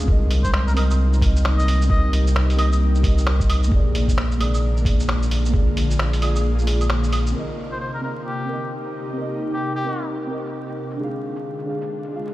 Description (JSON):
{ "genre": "future garage", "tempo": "132 BPM", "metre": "4/4", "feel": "swing 61% on 16ths", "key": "C minor", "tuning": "A4 = 440 Hz", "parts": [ { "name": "muted felt-like synth keys", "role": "accompaniment", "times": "0.0-12.3 s", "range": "Bb3 to F5", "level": "-28 LUFS", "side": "right 2 dB", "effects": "chorus, sidechain pumping, tape echo" }, { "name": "ethereal airy pad", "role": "sustained chords", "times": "0.0-12.3 s", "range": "C3 to Ab4", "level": "-29 LUFS", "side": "left 2 dB", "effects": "ensemble chorus, built-in reverb, sidechain pumping" }, { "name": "warm sub bass", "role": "bass", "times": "0.0-7.3 s", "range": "Bb1 to C2", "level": "-19 LUFS", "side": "equal", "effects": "sidechain pumping" }, { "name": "electronic kick drum", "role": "drums", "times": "0.1-5.6 s", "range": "none", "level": "-19 LUFS", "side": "equal", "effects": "none" }, { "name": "lo-fi sampler-style drum kit", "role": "drums", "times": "0.3-12.3 s", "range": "claves, finger snaps, hi-hat, shaker", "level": "-28 LUFS", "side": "right 1 dB", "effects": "low-pass filter on snare, low-pass filter on perc, low-pass filter on hats" }, { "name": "trumpet with cup mute", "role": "melody", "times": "0.4-2.8, 7.7-10.1 s", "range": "G4 to Eb5", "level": "-31 LUFS", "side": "left 2 dB", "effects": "analog delay" } ], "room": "little or no reverb", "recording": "played on a big sound system in a bare room, large studio reverb, vinyl crackle", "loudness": "-18 LUFS", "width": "side -16 dB against mid", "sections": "0.0-7.4 A section; 7.4-12.3 B section", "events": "kick drops out 6.4-7.4; band accent 6.9", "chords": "0.1 Cm7; 3.7 Bb7; 7.4 Cm7; 11.0 Ddim" }